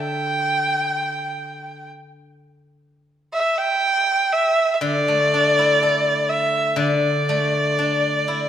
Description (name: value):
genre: chinese traditional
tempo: 61 BPM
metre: 4/4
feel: rubato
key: unclear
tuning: A4 = 440 Hz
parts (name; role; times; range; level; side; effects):
- rich erhu; melody; 0.0-8.5 s; D5 to G5; -19 LUFS; right 2 dB; none
- steel-string zither; accompaniment; 0.0-8.5 s; D3 to A4; -23 LUFS; left 3 dB; none
room: wet recital hall reverb, RT60 1.7 s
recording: minimal, uncompressed stereo recording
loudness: -17 LUFS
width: side -10 dB against mid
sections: 0.0-8.5 A section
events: none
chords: none